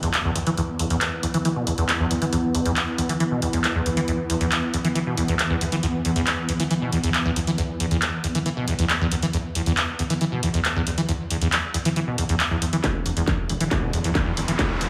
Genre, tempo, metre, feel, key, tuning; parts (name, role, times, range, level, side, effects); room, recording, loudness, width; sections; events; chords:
driving peak-time techno; 137 BPM; 4/4; straight; A4 = 440 Hz
acid bass, saw; riff; 0.0-14.9 s; E2 to E3; -26 LUFS; equal; analog chorus, sidechain pumping, tape echo
swarming drone; drone; 0.0-12.9 s; E3 to B3; -31 LUFS; equal; built-in reverb, sidechain pumping
techno drum kit; drums; 0.0-14.9 s; handclaps, hi-hat; -28 LUFS; equal
impact and riser; sound effects; 0.0-0.6, 13.4-14.9 s; -36 LUFS; equal
electronic kick drum; drums; 12.8-14.7 s; -26 LUFS; equal; distortion
dark detuned saw bass; bass; 13.1-14.9 s; E1 to E2; -30 LUFS; equal; sidechain pumping
wet lush hall reverb, RT60 2.1 s; studio reverb; -23 LUFS; mono
0.0-12.8 A section; 12.8-14.9 B section
impact 0.0-0.6; filter sweep on acid bass 0.0-12.8, 12.8-14.9; build-up 12.8-14.9; drum fill 12.8-14.9; riser 13.4-14.9
0.0 E5